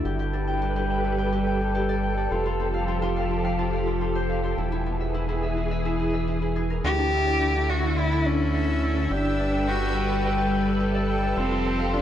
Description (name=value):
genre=IDM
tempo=106 BPM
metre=4/4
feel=straight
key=unclear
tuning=A4 = 439 Hz
part: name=soft string machine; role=sustained chords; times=0.0-12.0 s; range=D3 to B4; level=-26 LUFS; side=equal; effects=ensemble chorus
part: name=concert harp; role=arpeggios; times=0.0-12.0 s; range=A3 to G5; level=-30 LUFS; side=left 2 dB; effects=analog delay
part: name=rubbery square bass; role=bass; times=0.0-12.0 s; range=E1 to D2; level=-28 LUFS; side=equal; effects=tube saturation
part: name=clear cello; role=melody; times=6.8-12.0 s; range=C4 to G4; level=-26 LUFS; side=equal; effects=vintage 12-bit sampler grit, analog delay
part: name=bubbling stepped-filter texture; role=texture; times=7.2-12.0 s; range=E5 to E6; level=-37 LUFS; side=right 1 dB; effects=chorus, built-in reverb
room=light reverb, small room reverb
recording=dry, gritty hardware recording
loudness=-22 LUFS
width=side -10 dB against mid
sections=0.0-12.0 A section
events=none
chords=0.1 Gadd9; 2.3 Fadd9; 4.6 E; 6.8 Dsus2; 9.1 Gmaj9; 11.4 Fmaj9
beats=| 0.05 0.62 1.18 1.75 | 2.31 2.88 3.45 4.01 | 4.58 5.14 5.71 6.28 | 6.84 7.41 7.97 8.54 | 9.11 9.67 10.24 10.80 | 11.37 11.94